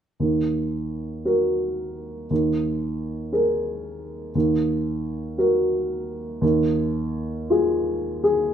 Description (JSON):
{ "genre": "classical", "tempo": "58 BPM (dotted quarters)", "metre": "6/8", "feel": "rubato", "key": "Eb minor", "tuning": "A4 = 440 Hz", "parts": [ { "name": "dark upright piano", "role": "accompaniment", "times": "0.2-8.5 s", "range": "Eb2 to Bb4", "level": "-21 LUFS", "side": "equal", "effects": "none" } ], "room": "moderate large studio reverb, RT60 1.0 s", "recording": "band playing live in one room", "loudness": "-21 LUFS", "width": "side -9 dB against mid", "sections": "0.2-8.5 A section", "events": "none", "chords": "0.2 Ebm; 2.3 Ebsus4; 4.3 Ebm; 6.4 Ebsus24" }